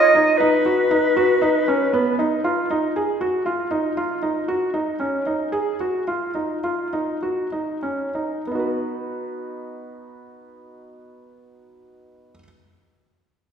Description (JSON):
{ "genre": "contemporary instrumental, contemporary", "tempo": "91-118 BPM", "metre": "5/4", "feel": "straight", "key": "B lydian", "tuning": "A4 = 438 Hz", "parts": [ { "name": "breathy clarinet", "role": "melody", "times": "0.0-2.4 s", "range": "B4 to D#5", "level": "-17 LUFS", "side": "equal", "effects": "none" }, { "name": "felt-muted upright piano", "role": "arpeggios", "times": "0.0-12.4 s", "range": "B3 to B4", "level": "-22 LUFS", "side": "right 1 dB", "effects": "none" } ], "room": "wet concert hall reverb, RT60 1.6 s", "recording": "recorded in a church or concert hall", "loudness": "-19 LUFS", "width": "side -7 dB against mid", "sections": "0.0-2.9 A section; 2.9-8.5 B section; 8.5-11.8 C section", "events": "slowing down 4.0-8.5", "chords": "0.0 B; 2.9 C#add9 (rootless); 8.5 B" }